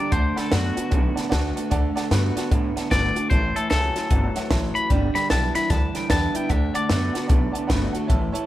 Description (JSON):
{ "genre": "rockabilly", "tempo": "150 BPM", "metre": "4/4", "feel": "swing 63% on 8ths", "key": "D major", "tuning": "A4 = 439 Hz", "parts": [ { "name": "twangy electric guitar", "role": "melody", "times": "0.0-7.9 s", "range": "F#4 to B5", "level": "-26 LUFS", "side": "left 2 dB", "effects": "analog delay" }, { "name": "picked acoustic archtop guitar", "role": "accompaniment", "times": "0.0-8.5 s", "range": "A2 to G4", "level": "-32 LUFS", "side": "left 4 dB", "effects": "none" }, { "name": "warm upright piano", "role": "accompaniment", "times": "0.0-8.4 s", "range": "C#5 to B5", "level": "-33 LUFS", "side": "right 3 dB", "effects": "none" }, { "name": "electric guitar through a small old amp", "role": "riff", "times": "0.0-8.5 s", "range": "G2 to B3", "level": "-28 LUFS", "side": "right 3 dB", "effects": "none" }, { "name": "upright bass", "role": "bass", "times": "0.1-8.4 s", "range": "G1 to A2", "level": "-24 LUFS", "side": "equal", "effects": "none" }, { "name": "compact cocktail drum kit", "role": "drums", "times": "0.1-8.4 s", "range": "hi-hat, kick drum, snare drum", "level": "-24 LUFS", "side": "equal", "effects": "none" } ], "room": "light reverb, studio ambience", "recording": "none", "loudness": "-20 LUFS", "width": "side -14 dB against mid", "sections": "0.0-8.5 A section", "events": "none", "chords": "0.1 D6; 3.3 A6; 4.9 G6; 6.5 D6" }